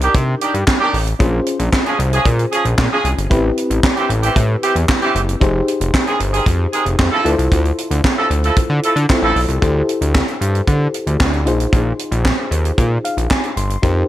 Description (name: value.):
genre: early-eighties boogie funk.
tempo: 114 BPM.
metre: 4/4.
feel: straight.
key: unclear.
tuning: A4 = 438 Hz.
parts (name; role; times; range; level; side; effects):
clear horn section; second line; 0.0-9.4 s; Eb3 to A4; -19 LUFS; right 2 dB; none.
FM electric piano with tremolo; accompaniment; 0.0-14.1 s; C4 to C6; -22 LUFS; left 2 dB; none.
fat analog bass; bass; 0.0-14.0 s; F1 to D3; -17 LUFS; equal; none.
tight funk drum kit; drums; 0.0-14.0 s; handclaps, hi-hat, kick drum, snare drum; -17 LUFS; equal; gated reverb.
room: small room ambience.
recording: none.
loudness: -14 LUFS.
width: side -13 dB against mid.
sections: 0.0-9.6 A section; 9.6-14.1 B section.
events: FM electric piano fill 12.8-13.8.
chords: 0.0 Cm9; 1.2 Bbm9; 3.3 Am9; 5.4 Fm9; 7.3 Dm9; 9.6 D9sus4; 11.5 Bb9sus4.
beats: 0.15 0.68 | 1.20 1.73 2.25 2.78 | 3.31 3.83 4.36 4.89 | 5.41 5.94 6.47 6.99 | 7.52 8.04 8.57 9.10 | 9.62 10.15 10.68 11.20 | 11.73 12.26 12.78 13.31 | 13.83.